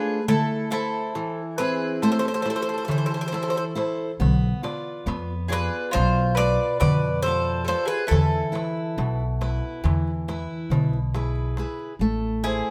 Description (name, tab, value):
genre	greek folk, Greek bouzouki band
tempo	138 BPM (eighths)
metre	9/8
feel	straight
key	A harmonic minor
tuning	A4 = 440 Hz
part	Greek bouzouki	melody	0.0-12.7 s	G#4 to D5	-29 LUFS	equal	none
part	mandolin	second line	0.0-12.7 s	E4 to B4	-33 LUFS	equal	none
part	picked steel-string acoustic guitar	accompaniment	0.0-12.7 s	B2 to D5	-30 LUFS	equal	none
part	darbuka	percussion	0.3-11.9 s	none	-29 LUFS	equal	none
part	upright bass	bass	4.2-12.6 s	A1 to F2	-27 LUFS	equal	none
room	light reverb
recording	none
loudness	-24 LUFS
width	mono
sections	0.0-12.0 A section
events	none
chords	0.3 Am; 4.2 Bdim; 8.1 E; 12.0 Am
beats	| 0.27 0.70 1.14 1.58 2.02 2.45 2.89 3.33 3.76 | 4.20 4.63 5.07 5.50 5.94 6.38 6.81 7.25 7.68 | 8.11 8.55 8.98 9.41 9.85 10.28 10.71 11.14 11.58 | 12.01 12.44